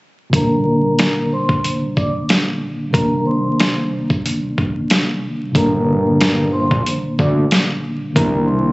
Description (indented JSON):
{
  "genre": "hip hop, boom-bap hip-hop",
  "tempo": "92 BPM",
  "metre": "4/4",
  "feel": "swing 57% on 16ths",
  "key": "G minor",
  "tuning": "A4 = 440 Hz",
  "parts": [
    { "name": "vibraphone with soft mallets", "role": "melody", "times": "0.3-8.7 s", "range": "Bb4 to D6", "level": "-22 LUFS", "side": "equal", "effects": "ping-pong delay" },
    { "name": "mellow tine electric piano", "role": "accompaniment", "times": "0.3-8.7 s", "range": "Bb2 to D4", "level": "-19 LUFS", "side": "equal", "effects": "medium stereo tremolo" },
    { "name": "boom bap sampler-style drum kit", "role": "drums", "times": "0.3-8.3 s", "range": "hi-hat, kick drum, snare drum", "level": "-17 LUFS", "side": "equal", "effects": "none" },
    { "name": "fat analog bass", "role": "bass", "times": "5.6-8.7 s", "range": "G1 to D2", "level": "-18 LUFS", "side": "equal", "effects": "none" }
  ],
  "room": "digital ambience",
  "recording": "recorded on a phone in the room, club reverb, vinyl crackle, nothing above 8.0 kHz",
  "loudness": "-15 LUFS",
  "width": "side -22 dB against mid",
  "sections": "0.3-5.5 A section; 5.5-8.7 B section",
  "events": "none",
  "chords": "0.3 Gm; 2.9 Cm7; 5.5 Gm; 8.2 Cm7"
}